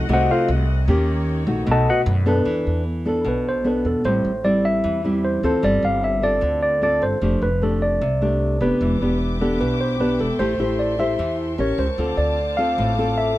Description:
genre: bossa nova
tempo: 151 BPM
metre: 4/4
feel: straight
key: A minor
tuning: A4 = 440 Hz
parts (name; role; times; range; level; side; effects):
- nylon-string guitar; accompaniment; 0.0-13.4 s; A2 to C5; -22 LUFS; equal; none
- warm chamber string section; sustained chords; 0.0-2.5, 8.8-13.4 s; A3 to D6; -33 LUFS; left 2 dB; none
- upright bass; bass; 0.0-13.3 s; E1 to F#2; -24 LUFS; equal; none
- tine electric piano; melody; 0.1-13.4 s; F4 to A5; -22 LUFS; equal; none
room: light reverb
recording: none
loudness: -18 LUFS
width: side -16 dB against mid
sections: 0.0-2.5 A section; 2.5-13.4 B section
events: tine electric piano solo 0.0-2.5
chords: 0.0 F7b9; 0.9 Eb7; 1.7 B7; 2.5 E7sus4; 4.0 Am7; 5.6 G9sus4; 7.2 F69; 8.8 Em7; 10.4 Am7; 11.6 A7b9; 12.0 Dm7

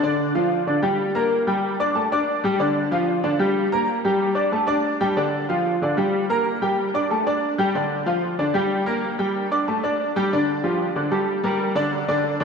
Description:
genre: latin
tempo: 187 BPM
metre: 4/4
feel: straight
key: unclear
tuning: A4 = 440 Hz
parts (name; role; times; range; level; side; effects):
- clear grand piano; solo; 0.0-12.4 s; D3 to D6; -20 LUFS; equal; ensemble chorus, tape echo
room: wet lush hall reverb, RT60 2.9 s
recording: dreamy mix soaked in reverb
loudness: -20 LUFS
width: side -5 dB against mid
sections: 0.0-10.3 A section; 10.3-12.4 B section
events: none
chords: 0.0 Dm; 0.7 Dsus4; 1.3 Gm; 2.0 Dsus4; 2.6 Dm; 3.2 Dsus4; 3.9 Gm; 4.5 Dsus4; 5.2 Dm; 5.8 Dsus4; 6.5 Gm; 7.1 Dsus4; 7.7 Dm; 8.4 Dsus4; 9.0 Gm; 9.7 Dsus4; 10.3 G5; 11.0 Dsus4; 11.6 Gm/D

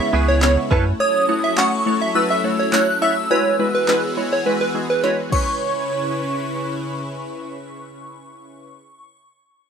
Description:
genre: dance-pop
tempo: 104 BPM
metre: 4/4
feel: straight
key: C# minor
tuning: A4 = 440 Hz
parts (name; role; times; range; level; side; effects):
- plucky unison lead; melody; 0.0-7.3 s; B4 to F#5; -21 LUFS; right 3 dB; sidechain pumping, ping-pong delay
- shimmering bell with halo; melody; 0.0-9.2 s; C#6 to F#6; -24 LUFS; left 3 dB; ensemble chorus, ping-pong delay
- glassy wavetable pluck; accompaniment; 0.0-9.2 s; G#3 to C#5; -22 LUFS; equal; chorus, sidechain pumping
- supersaw pad; sustained chords; 0.0-8.7 s; C#3 to B4; -27 LUFS; equal; phaser, sidechain pumping
- direct-recorded clean electric guitar; riff; 0.0-0.9 s; B3 to A4; -25 LUFS; right 6 dB; ensemble chorus
- downlifter; sound effects; 0.2-1.0 s; none; barely audible; none; none
- warm sub bass; bass; 0.1-0.9 s; C#2 to F#2; -18 LUFS; equal; sidechain pumping
- smooth R&B drum kit; drums; 0.4-5.5 s; crash cymbal, handclaps, kick drum, snare drum; -22 LUFS; equal; overdrive
room: wet studio ambience, RT60 0.5 s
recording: rough home demo mix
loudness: -17 LUFS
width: side -7 dB against mid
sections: 0.0-5.6 A section; 5.6-7.9 B section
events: drum fill 5.0-5.6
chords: 0.0 C#m7; 0.7 F#m7; 3.3 Eadd9; 5.3 C#m7

